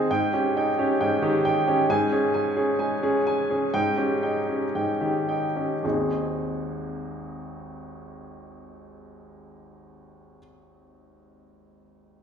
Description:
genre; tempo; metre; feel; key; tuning
classical, virtuoso piano study; 106-135 BPM; 4/4; rubato; Ab major; A4 = 439 Hz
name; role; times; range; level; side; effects
clear baby grand piano; solo; 0.0-12.2 s; Ab1 to Ab5; -23 LUFS; equal; none
room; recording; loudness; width
wet large studio reverb, RT60 1.3 s; heard from further back in the room; -22 LUFS; side -7 dB against mid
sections
0.0-5.8 A section; 5.8-10.3 B section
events
slowing down 1.0-5.8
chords
0.1 Eb7/Ab; 1.9 Db5/Ab; 3.7 Eb7/Ab; 5.8 Ab

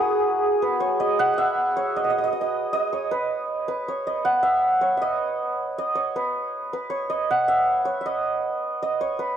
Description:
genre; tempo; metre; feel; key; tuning
indian classical; 157 BPM; 4/4; straight; unclear; A4 = 440 Hz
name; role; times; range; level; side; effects
santur; solo; 0.0-9.4 s; E4 to F#5; -21 LUFS; right 1 dB; none
room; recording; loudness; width
little or no reverb; dry, close 1970s-style studio recording; -21 LUFS; side -9 dB against mid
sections
0.0-2.0 A section; 2.0-9.4 B section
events
none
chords
none

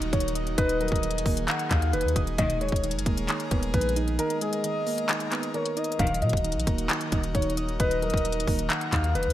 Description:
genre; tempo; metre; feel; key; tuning
hip hop, trap; 133 BPM; 4/4; half-time; Eb minor; A4 = 442 Hz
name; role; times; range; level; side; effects
dark concert grand piano; melody; 0.0-9.3 s; Ab4 to F5; -31 LUFS; left 1 dB; low-pass filter, digital delay
soft electric-piano-like synth keys; accompaniment; 0.0-9.3 s; Eb3 to Eb5; -32 LUFS; right 4 dB; chorus, low-pass filter
airy breathy pad; sustained chords; 0.0-9.3 s; Eb3 to Bb4; -36 LUFS; equal; chorus
long sustained 808-style bass; bass; 0.0-9.3 s; Eb1 to Bb2; -29 LUFS; equal; none
trap drum kit; drums; 0.0-9.3 s; handclaps, hi-hat, kick drum; -28 LUFS; equal; gated reverb
downlifter; sound effects; 0.0-2.4 s; none; -48 LUFS; left 2 dB; none
gliding portamento lead; second line; 0.6-9.1 s; Db5 to Gb5; -33 LUFS; left 3 dB; chorus, digital delay
dark studio string section; stabs; 2.4-2.6, 6.0-6.2 s; Bb1 to Eb3; -33 LUFS; left 4 dB; none
room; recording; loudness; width
light reverb, digital ambience; bright 1980s-style digital production; -24 LUFS; side -13 dB against mid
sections
0.0-9.3 A section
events
kick muted 4.2-6.0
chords
0.0 Ebm; 2.4 Abmadd9/Eb; 6.0 Ebm

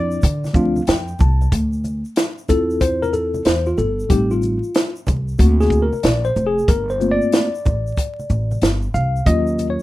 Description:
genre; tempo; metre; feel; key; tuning
hip hop, jazz-hop; 93 BPM; 4/4; swing 66% on 16ths; D minor; A4 = 440 Hz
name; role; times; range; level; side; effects
breathy flugelhorn; melody; 0.0-0.8 s; D5; -27 LUFS; equal; none
mellow tine electric piano; accompaniment; 0.0-9.8 s; F3 to A5; -20 LUFS; left 1 dB; medium stereo tremolo
upright bass; bass; 0.0-9.8 s; E#1 to D3; -19 LUFS; equal; none
egg shaker and congas; percussion; 0.1-9.8 s; none; -32 LUFS; right 2 dB; none
compact cocktail drum kit; drums; 0.2-9.8 s; hi-hat, kick drum, shaker, snare drum; -18 LUFS; equal; none
room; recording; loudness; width
moderate small room reverb, RT60 0.5 s; rough home demo mix, vinyl crackle; -16 LUFS; side -16 dB against mid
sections
0.0-1.5 A section; 1.5-9.8 B section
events
tine electric piano fill 0.2-1.5; tine electric piano solo 1.5-9.8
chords
0.0 Dm7; 1.5 Dm9; 4.1 Am7b5; 5.4 D7alt; 6.7 Gm11; 9.3 Ebm7

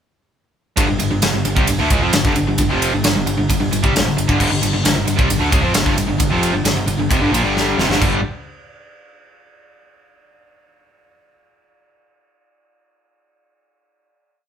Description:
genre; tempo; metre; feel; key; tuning
hard rock; 132 BPM; 4/4; straight; unclear; A4 = 440 Hz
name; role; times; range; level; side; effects
crunchy overdriven guitar; riff; 0.8-8.2 s; F2 to C4; -23 LUFS; equal; none
distorted electric guitar; riff; 0.8-8.2 s; F2 to C4; -22 LUFS; right 5 dB; overdrive
overdriven electric guitar; riff; 0.8-8.2 s; F2 to C4; -22 LUFS; left 6 dB; none
growling picked electric bass; bass; 0.8-8.2 s; F1 to F2; -23 LUFS; equal; overdrive
big rock drum kit; drums; 0.8-8.1 s; crash cymbal, kick drum, ride cymbal, snare drum; -18 LUFS; equal; none
room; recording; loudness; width
moderate studio reverb, RT60 0.7 s; band playing live in one room; -14 LUFS; side -8 dB against mid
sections
0.8-8.0 riff; 8.0-9.8 final chord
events
drum fill 7.6-8.0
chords
0.8 G5

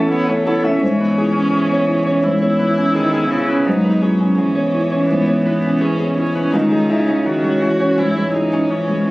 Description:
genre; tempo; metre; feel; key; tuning
neoclassical piano and strings; 84 BPM; 4/4; rubato; E major; A4 = 444 Hz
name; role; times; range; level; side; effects
warm cello; second line; 0.0-9.1 s; C#3 to B3; -21 LUFS; right 1 dB; slapback echo
felt-muted upright piano; accompaniment; 0.0-9.1 s; C#2 to E4; -17 LUFS; equal; none
rich viola; accompaniment; 0.0-9.1 s; B3 to F#4; -22 LUFS; right 1 dB; none
Celtic harp; arpeggios; 0.0-9.1 s; B3 to A5; -22 LUFS; equal; slapback echo
room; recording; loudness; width
light reverb; recorded on a phone in the room, club reverb; -14 LUFS; side -20 dB against mid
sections
0.0-9.1 A section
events
none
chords
0.0 Aadd9; 0.8 E6/G#; 6.5 C#madd9

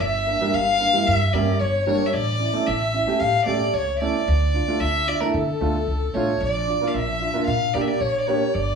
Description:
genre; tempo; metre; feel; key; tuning
klezmer; 112 BPM; 4/4; straight; unclear; A4 = 440 Hz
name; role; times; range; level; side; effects
rich violin; melody; 0.0-8.8 s; A4 to F5; -24 LUFS; left 1 dB; none
bright reedy bansuri; second line; 0.0-8.8 s; A4 to F5; -26 LUFS; left 1 dB; none
upright bass; bass; 0.0-8.8 s; G1 to D3; -26 LUFS; equal; none
warm upright piano; accompaniment; 0.3-8.4 s; G3 to G4; -25 LUFS; right 2 dB; none
room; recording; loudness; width
wet large studio reverb, RT60 0.9 s; band playing live in one room, small room ambience; -19 LUFS; side -6 dB against mid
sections
0.0-8.8 A section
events
none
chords
0.0 Gm; 2.1 A; 4.3 Dm; 6.4 Bb

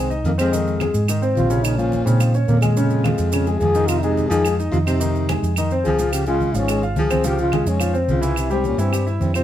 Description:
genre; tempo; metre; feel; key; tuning
Afro-Cuban jazz; 214 BPM; 4/4; straight; F minor; A4 = 441 Hz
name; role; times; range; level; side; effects
growling trombone; melody; 0.0-9.4 s; Ab3 to Ab4; -24 LUFS; equal; none
mellow baritone saxophone; second line; 0.0-9.4 s; F2 to F3; -26 LUFS; left 3 dB; none
warm concert grand piano; accompaniment; 0.0-9.4 s; Db3 to F5; -23 LUFS; left 2 dB; none
hollow-body short-scale fingered electric bass; bass; 0.0-9.4 s; Ab1 to Bb2; -21 LUFS; right 1 dB; none
congas; percussion; 0.1-9.3 s; none; -28 LUFS; right 1 dB; none
maracas; percussion; 0.1-9.4 s; none; -35 LUFS; right 5 dB; none
claves; percussion; 0.4-9.4 s; none; -32 LUFS; right 5 dB; none
room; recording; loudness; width
moderate studio reverb, RT60 0.9 s; band playing live in one room; -17 LUFS; side -11 dB against mid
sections
0.0-9.4 A section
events
none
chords
0.0 Fm7; 1.6 Bbm7; 3.9 Fm7; 6.1 Dbmaj7; 8.4 C

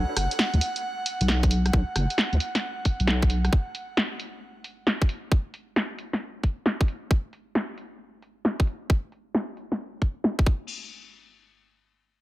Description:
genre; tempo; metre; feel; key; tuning
UK garage, two-step garage; 134 BPM; 4/4; swing 66% on 16ths; unclear; A4 = 440 Hz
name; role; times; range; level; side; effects
airy breathy pad; sustained chords; 0.0-3.5 s; F#5; -34 LUFS; right 2 dB; chorus, sidechain pumping
deep soft wobble bass; bass; 0.0-3.5 s; F#1 to D2; -23 LUFS; equal; chorus
punchy analog drum machine; drums; 0.2-10.6 s; crash cymbal, hi-hat, rim click, snare drum; -27 LUFS; equal; low-pass filter on hats, small room ambience, low-pass filter on perc, low-pass filter on snare, low-pass filter on cymbals
electronic kick drum; drums; 1.4-10.6 s; none; -21 LUFS; equal; small room ambience
room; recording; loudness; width
digital ambience; echo-heavy mix; -24 LUFS; side -17 dB against mid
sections
0.0-10.7 A section; 10.7-12.2 B section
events
filter sweep on drum 0.0-10.7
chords
0.0 B5; 3.5 N.C.

